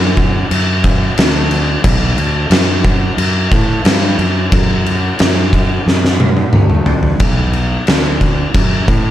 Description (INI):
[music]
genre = stoner and doom metal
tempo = 90 BPM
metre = 4/4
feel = straight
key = B minor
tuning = A4 = 441 Hz
[part]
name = fuzz fingered electric bass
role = bass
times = 0.0-9.1 s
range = B1 to A2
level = -15 LUFS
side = equal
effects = overdrive
[part]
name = oversized low-tuned drum kit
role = drums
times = 0.2-9.0 s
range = crash cymbal, kick drum, snare drum, toms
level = -12 LUFS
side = equal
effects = none
[sound]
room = little or no reverb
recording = none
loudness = -11 LUFS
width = side -12 dB against mid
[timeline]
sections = 0.0-7.2 A section; 7.2-9.1 B section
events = drum fill 5.9-7.2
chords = none